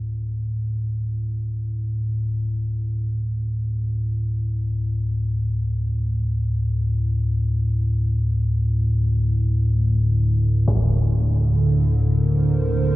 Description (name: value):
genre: dark ambient drone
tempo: free time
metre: none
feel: none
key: unclear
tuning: A4 = 437 Hz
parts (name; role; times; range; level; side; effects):
- deep rumbling drone; drone; 0.0-13.0 s; D2 to A2; -20 LUFS; equal; built-in reverb, wide subtle chorus
- dark analog pad; sustained chords; 11.0-13.0 s; D3 to C5; -23 LUFS; right 2 dB; chorus
- impact; percussion; 10.7-10.9 s; none; -30 LUFS; equal; low-pass filter on sfx
room: moderate huge ambient reverb, RT60 7.4 s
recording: dreamy mix soaked in reverb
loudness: -19 LUFS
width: side -17 dB against mid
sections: 0.0-13.0 A section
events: fade-in on impacts and reversed cymbals 0.0-13.0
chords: 0.0 D5; 10.7 Bbadd9/D